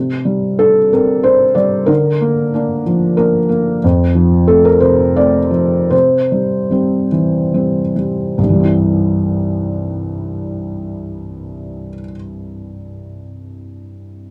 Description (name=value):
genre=neoclassical minimalist piano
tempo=70-94 BPM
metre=3/4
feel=rubato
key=C mixolydian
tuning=A4 = 438 Hz
part: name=felt-muted upright piano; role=solo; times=0.0-14.3 s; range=C2 to D5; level=-15 LUFS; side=equal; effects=none
room=moderate booth ambience, RT60 0.2 s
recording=dark, warm production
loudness=-14 LUFS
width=mono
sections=0.0-8.4 A section; 8.4-13.2 B section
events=slowing down 2.9-8.4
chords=0.0 Csus2; 1.9 Bb/D; 3.8 F; 5.9 C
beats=0.59 1.24 | 1.89 2.54 3.19 | 3.83 4.49 5.18 | 5.92 6.72 7.54 | 8.38 9.17 9.97 | 10.77 11.58 12.38